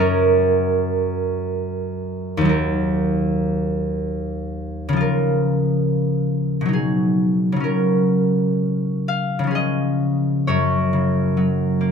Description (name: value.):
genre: classical, solo harp piece.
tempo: 64-73 BPM.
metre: 3/4.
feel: rubato.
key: F# major.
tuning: A4 = 441 Hz.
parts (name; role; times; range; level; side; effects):
concert harp; solo; 0.0-11.9 s; D#2 to E#5; -18 LUFS; equal; none.
room: light reverb.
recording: none.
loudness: -18 LUFS.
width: side -6 dB against mid.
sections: 0.0-10.5 A section; 10.5-11.9 B section.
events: none.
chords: 0.0 F#; 2.5 D#m; 5.0 A#m/C#; 6.8 G#m7/B; 7.7 F#/C#; 9.5 C#; 10.5 F#5.